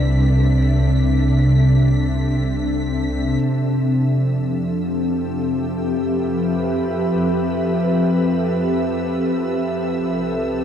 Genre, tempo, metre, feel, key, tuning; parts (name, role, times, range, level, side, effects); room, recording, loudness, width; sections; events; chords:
ambient; free time; F lydian; A4 = 441 Hz
ethereal airy pad; sustained chords; 0.0-10.6 s; C3 to E5; -17 LUFS; equal; ensemble chorus, built-in reverb
celesta; arpeggios; 0.0-3.5 s; A4 to D5; -40 LUFS; left 2 dB
warm studio double bass section; bass; 0.0-10.6 s; C2 to F2; -25 LUFS; equal
warm studio violin section; texture; 0.0-10.6 s; E6 to B6; -38 LUFS; left 2 dB
wet huge ambient reverb, RT60 8.7 s; dark, warm production; -17 LUFS; side -9 dB against mid
0.0-3.4 A section; 3.4-10.6 B section
fade-in on double bass section 3.4-10.6; fade-in on violin section 3.4-10.6
0.0 C6; 3.4 Fmaj9#11; 10.0 C6